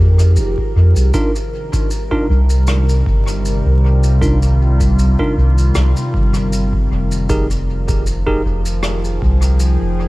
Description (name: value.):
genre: ambient dub.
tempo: 78 BPM.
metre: 4/4.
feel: swing 54% on 16ths.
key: F minor.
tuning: A4 = 437 Hz.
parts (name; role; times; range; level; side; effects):
warbly tape-like pad; sustained chords; 0.0-10.1 s; C3 to G5; -20 LUFS; equal; chorus, built-in reverb, phaser.
soft dub sub bass; bass; 0.0-10.1 s; F1 to F2; -14 LUFS; equal; none.
shaker and rim click; drums; 0.2-9.8 s; none; -28 LUFS; left 1 dB; dub echo.
electronic kick drum; drums; 0.6-9.4 s; none; -20 LUFS; equal; none.
bell-like tine electric piano; stabs; 1.1-8.4 s; D4 to Bb4; -24 LUFS; right 1 dB; vintage 12-bit sampler grit, dub echo.
room: small room ambience.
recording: vinyl crackle.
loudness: -12 LUFS.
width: side -20 dB against mid.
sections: 0.0-10.1 A section.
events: none.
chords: 0.0 Fm11; 1.1 Cm11; 7.3 Fm11.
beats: 0.37 | 1.14 1.91 2.68 3.45 | 4.22 4.99 5.76 6.53 | 7.29 8.06 8.83 9.60.